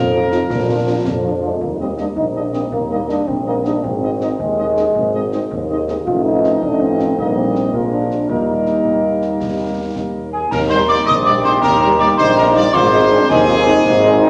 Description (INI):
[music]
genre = military-style march for wind band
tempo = 108 BPM (dotted quarters)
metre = 6/8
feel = straight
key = Eb major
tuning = A4 = 445 Hz
[part]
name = bright trumpet section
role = melody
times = 0.0-14.3 s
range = Ab4 to Eb5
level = -28 LUFS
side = equal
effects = none
[part]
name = clear euphonium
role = second line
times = 0.0-14.3 s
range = Ab3 to G4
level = -21 LUFS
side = equal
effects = none
[part]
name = mellow trombone section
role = sustained chords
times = 0.0-1.4, 10.5-14.3 s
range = Eb3 to Eb4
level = -26 LUFS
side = equal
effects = none
[part]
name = clear tuba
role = bass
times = 0.0-14.3 s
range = Ab1 to Bb2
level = -22 LUFS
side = equal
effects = none
[part]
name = warm French horn section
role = accompaniment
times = 0.1-14.3 s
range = F3 to F4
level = -24 LUFS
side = equal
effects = none
[part]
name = concert snare drum, concert bass drum and clash cymbals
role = drums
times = 0.3-14.0 s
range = none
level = -31 LUFS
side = equal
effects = none
[part]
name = glockenspiel with soft plastic mallets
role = second line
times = 10.3-14.3 s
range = Ab5 to Eb6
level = -21 LUFS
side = equal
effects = none
[part]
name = mellow hollow piccolo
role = second line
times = 10.3-14.3 s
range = Ab5 to Eb6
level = -20 LUFS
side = equal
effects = none
[sound]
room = wet recital hall reverb, RT60 1.6 s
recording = nothing above 10.7 kHz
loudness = -16 LUFS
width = mono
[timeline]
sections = 0.0-1.6 A section; 1.6-10.5 B section; 10.5-14.3 B section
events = none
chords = 0.0 Bbsus4; 0.5 Bb; 1.6 Eb; 3.8 Ab; 6.1 F7/A; 7.2 Eb/Bb; 7.7 Bb7; 8.3 Eb; 12.7 Ab